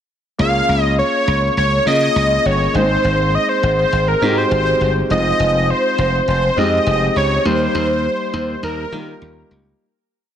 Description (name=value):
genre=1980s-style pop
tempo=102 BPM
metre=4/4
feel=straight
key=unclear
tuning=A4 = 440 Hz
part: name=wide unison lead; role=melody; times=0.4-9.5 s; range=Bb4 to F5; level=-17 LUFS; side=equal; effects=ping-pong delay
part: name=warm concert grand piano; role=accompaniment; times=0.4-9.8 s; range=G3 to Ab4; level=-21 LUFS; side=equal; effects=none
part: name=slap bass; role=bass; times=0.4-9.7 s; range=F1 to Eb3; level=-20 LUFS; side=equal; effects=none
room=light reverb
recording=none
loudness=-14 LUFS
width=side -9 dB against mid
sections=0.4-9.8 verse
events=fade-out 7.5-9.8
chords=0.4 Db6; 2.7 Ab; 5.1 Fm7; 7.5 Eb